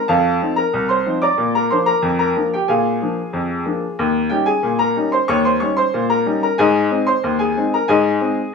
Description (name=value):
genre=ragtime piano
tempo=92 BPM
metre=2/4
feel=straight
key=Ab major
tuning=A4 = 439 Hz
part: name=clear upright piano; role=solo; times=0.0-8.5 s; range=C2 to D6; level=-15 LUFS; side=left 1 dB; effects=none
room=moderate studio reverb, RT60 0.6 s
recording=band playing live in one room, small room ambience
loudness=-15 LUFS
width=side -5 dB against mid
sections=0.0-8.5 A section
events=none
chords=0.1 F7; 1.4 Bb7; 4.0 Eb7; 6.6 Ab